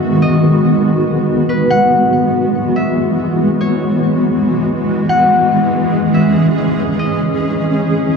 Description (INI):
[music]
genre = hip hop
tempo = 142 BPM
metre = 4/4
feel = half-time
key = unclear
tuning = A4 = 436 Hz
[part]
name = concert harp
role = melody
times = 0.0-8.2 s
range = B4 to F#5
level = -18 LUFS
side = left 2 dB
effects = low-pass filter, digital delay
[part]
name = granular cloud pad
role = sustained chords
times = 0.0-8.2 s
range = D#3 to G#4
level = -12 LUFS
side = equal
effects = built-in reverb
[sound]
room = wet lush hall reverb, RT60 2.3 s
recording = none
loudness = -11 LUFS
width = side -5 dB against mid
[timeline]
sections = 0.0-8.2 A section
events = none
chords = 0.0 G#m7; 1.7 Eadd9; 5.1 C#m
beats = | 0.01 0.44 0.86 1.28 | 1.71 2.13 2.55 2.97 | 3.40 3.82 4.24 4.66 | 5.08 5.51 5.93 6.35 | 6.78 7.20 7.62 8.04